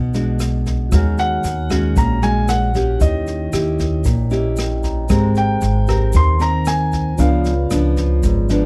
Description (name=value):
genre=bossa nova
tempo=115 BPM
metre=4/4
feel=straight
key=unclear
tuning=A4 = 440 Hz
part: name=warm concert grand piano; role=melody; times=0.0-8.2 s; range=Eb5 to C6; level=-25 LUFS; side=equal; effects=none
part: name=nylon-string guitar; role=accompaniment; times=0.0-8.7 s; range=Ab2 to Bb4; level=-23 LUFS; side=equal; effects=none
part: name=upright bass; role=bass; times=0.0-8.7 s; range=Ab1 to Eb2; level=-21 LUFS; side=equal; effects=none
part: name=jazz brush drum kit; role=drums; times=0.1-8.6 s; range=kick drum, rim click, snare drum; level=-25 LUFS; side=equal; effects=none
part: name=tube shaker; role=percussion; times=0.1-8.7 s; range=none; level=-42 LUFS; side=equal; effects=none
part: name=vibraphone with soft mallets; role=accompaniment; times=0.9-8.7 s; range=Fb4 to F6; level=-30 LUFS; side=equal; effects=none
room=little or no reverb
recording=close, detailed microphones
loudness=-17 LUFS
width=mono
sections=0.0-8.7 A section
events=vibraphone fill 4.1-5.1, 8.2-8.7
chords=0.0 E9 (rootless); 0.9 Ebm11; 3.0 Eb7b9; 5.1 Abmaj9; 7.2 Db7b9